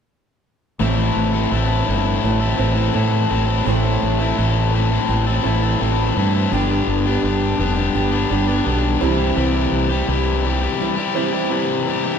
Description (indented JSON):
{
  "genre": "rock",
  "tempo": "84 BPM",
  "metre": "4/4",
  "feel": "straight",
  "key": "A minor",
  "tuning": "A4 = 440 Hz",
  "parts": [
    { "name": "picked steel-string acoustic guitar", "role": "accompaniment", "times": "0.8-12.2 s", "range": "A2 to C5", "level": "-24 LUFS", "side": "right 9 dB", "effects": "none" },
    { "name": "cranked stack guitar", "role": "riff", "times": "0.8-12.2 s", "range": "G2 to A4", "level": "-20 LUFS", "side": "left 6 dB", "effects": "overdrive" },
    { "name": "growling fingered electric bass", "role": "bass", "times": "0.8-10.7 s", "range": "F1 to A2", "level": "-20 LUFS", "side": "right 1 dB", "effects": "overdrive" }
  ],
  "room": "wet large studio reverb, RT60 1.2 s",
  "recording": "band playing live in one room",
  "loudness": "-16 LUFS",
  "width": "side -7 dB against mid",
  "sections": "0.8-12.2 A section",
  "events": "none",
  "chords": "0.8 Am; 6.5 G; 9.0 C"
}